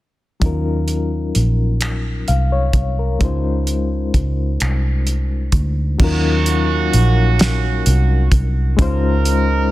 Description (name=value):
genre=slow six-eight R&B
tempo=43 BPM (dotted quarters)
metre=6/8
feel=straight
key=unclear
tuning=A4 = 437 Hz
part: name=reed electric piano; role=accompaniment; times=0.4-9.7 s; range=Gb3 to F5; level=-22 LUFS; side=left 5 dB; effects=tremolo
part: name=vintage muted fingered electric bass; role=bass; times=0.4-9.7 s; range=Bb1 to Eb2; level=-17 LUFS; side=equal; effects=none
part: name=cloth-damped thuddy drum kit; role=drums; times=0.4-9.5 s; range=crash cymbal, finger snaps, hi-hat, kick drum, snare drum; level=-19 LUFS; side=equal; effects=none
part: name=clear horn section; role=stabs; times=6.0-9.7 s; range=Bb3 to Bb4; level=-22 LUFS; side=right 7 dB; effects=tape echo
room=small room ambience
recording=dense, heavily limited modern master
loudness=-15 LUFS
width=side -16 dB against mid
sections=0.4-6.0 A section; 6.0-9.7 B section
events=none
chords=0.4 Ebm9; 3.2 Dbmaj9; 6.0 Ebm9; 8.8 Dbmaj9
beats=| 0.42 1.81 | 3.21 4.60 | 6.00 7.39 | 8.79